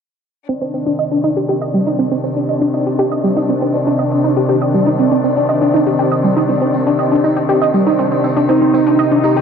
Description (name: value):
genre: melodic techno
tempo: 120 BPM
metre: 4/4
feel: straight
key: C minor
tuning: A4 = 440 Hz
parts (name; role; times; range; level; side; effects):
- clear studio string section; sustained chords; 0.5-9.4 s; Eb3 to Eb4; -18 LUFS; left 3 dB; none
- analog pluck; arpeggios; 0.5-9.4 s; G3 to Eb5; -15 LUFS; right 1 dB; chorus, digital delay
- analog drone; drone; 0.7-9.4 s; C3; -21 LUFS; right 1 dB; chorus
- electronic hi-hat; drums; 0.5-9.4 s; none; -46 LUFS; left 2 dB; none
- tambourine; percussion; 0.5-9.4 s; none; -52 LUFS; right 3 dB; none
- fat analog lead; melody; 8.5-9.4 s; Eb4 to G4; -13 LUFS; right 1 dB; lush chorus, ping-pong delay
room: moderate lush hall reverb, RT60 1.8 s, small room ambience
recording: low-pass filter, nothing above 11.0 kHz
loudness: -12 LUFS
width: side -7 dB against mid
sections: 0.5-9.4 A section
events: filter sweep on synth pluck 0.5-9.4; filter sweep 0.5-9.4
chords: 0.5 Cmadd9